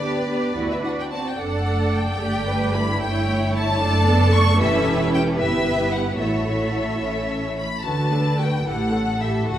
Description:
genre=quick classical-period movement for string orchestra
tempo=74 BPM (dotted quarters)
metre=6/8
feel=rubato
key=D major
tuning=A4 = 440 Hz
part: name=clear studio violin section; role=melody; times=0.0-9.6 s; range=D5 to C#6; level=-26 LUFS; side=left 2 dB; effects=none
part: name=rich studio violin section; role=second line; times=0.0-9.6 s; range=E4 to D5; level=-28 LUFS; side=left 1 dB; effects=none
part: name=rich studio viola section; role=accompaniment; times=0.0-9.6 s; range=A3 to A4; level=-25 LUFS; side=right 1 dB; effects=none
part: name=rich studio cello section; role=bass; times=0.0-9.6 s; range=D2 to B4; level=-27 LUFS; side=right 1 dB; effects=none
part: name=rich studio double bass section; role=bass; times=0.0-9.6 s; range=E1 to D2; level=-24 LUFS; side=right 1 dB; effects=none
room=wet recital hall reverb, RT60 1.6 s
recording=heard from further back in the room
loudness=-19 LUFS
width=side -11 dB against mid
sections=0.0-7.9 A section; 7.9-9.6 B section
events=none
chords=0.0 G/D; 0.6 D; 1.4 D/F#; 2.2 G; 3.0 A7/G; 3.8 D/F#; 4.6 Em; 5.4 Em/G; 6.2 A5; 7.0 A; 7.9 D; 8.7 A7

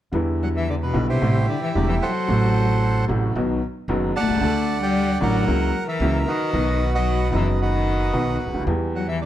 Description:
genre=tango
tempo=113 BPM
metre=4/4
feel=rubato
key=E minor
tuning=A4 = 440 Hz
part: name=clear upright piano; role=accompaniment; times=0.1-9.3 s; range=E1 to A4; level=-24 LUFS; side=equal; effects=none
part: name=upright bass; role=bass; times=0.1-9.3 s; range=E1 to E2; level=-24 LUFS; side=right 1 dB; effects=none
part: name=bandoneon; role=melody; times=0.4-9.3 s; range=E4 to A5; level=-25 LUFS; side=right 2 dB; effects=plate reverb
part: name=rich cello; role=second line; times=0.4-9.3 s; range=B2 to A3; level=-26 LUFS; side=left 4 dB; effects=none
room=light reverb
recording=dark, warm production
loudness=-19 LUFS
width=side -12 dB against mid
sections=0.1-9.3 A section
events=none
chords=0.1 Em7; 1.2 Am7; 2.3 F#dim/A; 3.4 B; 4.4 D; 5.5 F#7/C#; 6.5 B; 8.7 Em

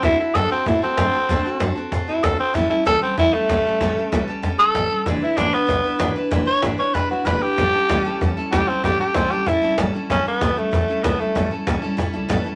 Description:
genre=rockabilly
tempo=191 BPM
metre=4/4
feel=straight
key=A mixolydian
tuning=A4 = 439 Hz
part: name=growling tenor saxophone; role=melody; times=0.0-11.5 s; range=A3 to C#5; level=-22 LUFS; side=equal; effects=none
part: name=picked steel-string acoustic guitar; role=accompaniment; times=0.0-12.6 s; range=A2 to B4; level=-28 LUFS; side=equal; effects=none
part: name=upright bass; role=bass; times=0.0-12.5 s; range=E1 to A2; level=-29 LUFS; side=equal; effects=none
part: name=cajon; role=drums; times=0.0-12.5 s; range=none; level=-27 LUFS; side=equal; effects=none
room=moderate studio reverb, RT60 0.6 s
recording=none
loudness=-20 LUFS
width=mono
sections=0.0-10.1 A section; 10.1-12.6 B section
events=break 9.9; tenor saxophone solo 10.1-12.6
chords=0.0 D7; 2.5 A7; 5.1 E7; 7.6 A7

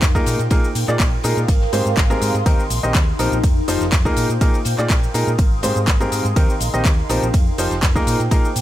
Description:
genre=piano house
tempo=123 BPM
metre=4/4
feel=straight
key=Eb major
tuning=A4 = 440 Hz
part: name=hollow-body short-scale fingered electric bass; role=bass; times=0.0-8.6 s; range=F1 to Bb2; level=-22 LUFS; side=equal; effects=sidechain pumping
part: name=electronic kick drum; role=drums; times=0.0-8.4 s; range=none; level=-17 LUFS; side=equal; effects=overdrive
part: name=house drum kit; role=drums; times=0.0-8.6 s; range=cabasa, handclaps, hi-hat, ride cymbal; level=-25 LUFS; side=left 1 dB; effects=overdrive
part: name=open jazz drum kit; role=drums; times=0.0-8.6 s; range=hi-hat, snare drum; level=-35 LUFS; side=left 4 dB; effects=none
part: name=ethereal airy pad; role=texture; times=0.0-8.6 s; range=Eb4 to Eb6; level=-26 LUFS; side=right 1 dB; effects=ensemble chorus, built-in reverb, phaser, sidechain pumping
part: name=clear grand piano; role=riff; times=0.1-8.5 s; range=Ab2 to Eb5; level=-22 LUFS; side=equal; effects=sidechain pumping, dub echo
room=small room ambience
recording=none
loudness=-15 LUFS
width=side -13 dB against mid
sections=0.0-8.6 A section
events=none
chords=0.3 Bb7sus4; 1.5 Abmaj9; 2.5 Eb6; 3.4 F9; 4.2 Bb7sus4; 5.4 Abmaj9; 6.4 Eb6; 7.3 F9; 8.1 Bb7sus4

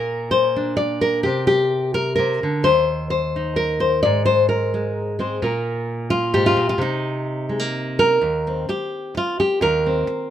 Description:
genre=folk, solo fingerstyle acoustic guitar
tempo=130 BPM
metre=3/4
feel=rubato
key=unclear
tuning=A4 = 441 Hz
part: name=nylon-string guitar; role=solo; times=0.0-10.3 s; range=Eb2 to D5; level=-18 LUFS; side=left 1 dB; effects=none
room=light reverb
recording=minimal, uncompressed stereo recording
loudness=-18 LUFS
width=side -10 dB against mid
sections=0.0-8.2 A section; 8.2-10.3 B section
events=none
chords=0.0 Bbadd9; 1.3 C5; 2.7 N.C.; 4.0 Ab; 5.4 Bb5; 6.8 Cm7; 8.2 Cm7/Eb

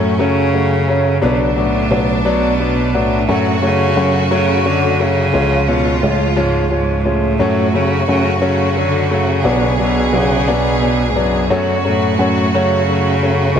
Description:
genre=six-eight pop ballad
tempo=58 BPM (dotted quarters)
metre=6/8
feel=straight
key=F# harmonic minor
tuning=A4 = 440 Hz
part: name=clear cello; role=melody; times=0.0-13.6 s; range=F#2 to D3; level=-17 LUFS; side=right 1 dB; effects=diffuse ambient delay
part: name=clear studio violin section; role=second line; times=0.0-13.6 s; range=C#4 to G#4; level=-22 LUFS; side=right 1 dB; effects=none
part: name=clear concert grand piano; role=accompaniment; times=0.0-13.6 s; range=E#3 to D4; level=-18 LUFS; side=left 3 dB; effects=none
part: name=bell-like tine electric piano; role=bass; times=0.0-13.6 s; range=B1 to F#2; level=-19 LUFS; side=right 1 dB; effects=medium stereo tremolo
room=wet cathedral reverb, RT60 7.5 s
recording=dreamy mix soaked in reverb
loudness=-13 LUFS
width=side -8 dB against mid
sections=0.0-13.6 A section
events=none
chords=0.0 F#m; 1.2 Bm; 3.3 F#m; 5.3 C#; 7.4 F#m; 9.4 Bm; 11.5 F#m

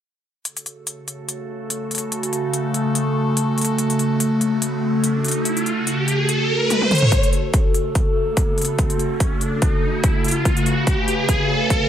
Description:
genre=heavy wobble dubstep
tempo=144 BPM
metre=4/4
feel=swing 55% on 16ths, half-time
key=F# minor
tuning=A4 = 440 Hz
part: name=evolving wavetable pad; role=sustained chords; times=1.2-11.9 s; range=C#3 to B4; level=-21 LUFS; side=equal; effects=phaser, built-in reverb, sidechain pumping
part: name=big-room dance drum kit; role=drums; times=0.5-11.8 s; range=hi-hat, toms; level=-23 LUFS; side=left 1 dB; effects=overdrive
part: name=riser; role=sound effects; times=4.7-11.9 s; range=none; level=-23 LUFS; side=equal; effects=none
part: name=electronic kick drum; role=drums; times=7.1-11.8 s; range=none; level=-19 LUFS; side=equal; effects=overdrive
room=little or no reverb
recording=none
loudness=-17 LUFS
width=side -10 dB against mid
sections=0.5-7.1 A section; 7.1-11.9 B section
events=riser 4.7-7.1, 7.1-11.9; drum fill 6.7-7.1; build-up 7.1-11.9; filter sweep 7.1-11.9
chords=0.5 F#m

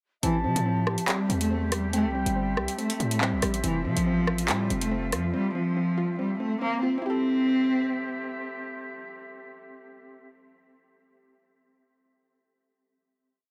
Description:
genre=hip hop, drill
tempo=141 BPM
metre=4/4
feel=half-time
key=A minor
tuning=A4 = 440 Hz
part: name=dark cello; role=melody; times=0.2-8.3 s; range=E3 to C4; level=-29 LUFS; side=equal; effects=tape echo
part: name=gliding portamento lead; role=second line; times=0.2-2.7 s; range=G5 to A5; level=-37 LUFS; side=equal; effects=chorus, tape echo
part: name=soft round pluck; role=accompaniment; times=0.2-10.3 s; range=C4 to A4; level=-36 LUFS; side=equal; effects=chorus
part: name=small flute group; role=sustained chords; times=0.2-10.3 s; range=C4 to E5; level=-40 LUFS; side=equal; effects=none
part: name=distorted 808-style bass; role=bass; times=0.2-5.3 s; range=F1 to C3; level=-33 LUFS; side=equal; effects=distortion
part: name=drill drum kit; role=drums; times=0.2-5.2 s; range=handclaps, hi-hat, rim click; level=-31 LUFS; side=equal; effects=none
room=little or no reverb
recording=none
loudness=-27 LUFS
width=mono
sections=0.2-7.0 hook; 7.0-10.4 final chord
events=none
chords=0.2 Am7; 3.6 Fmaj7; 7.0 Am7

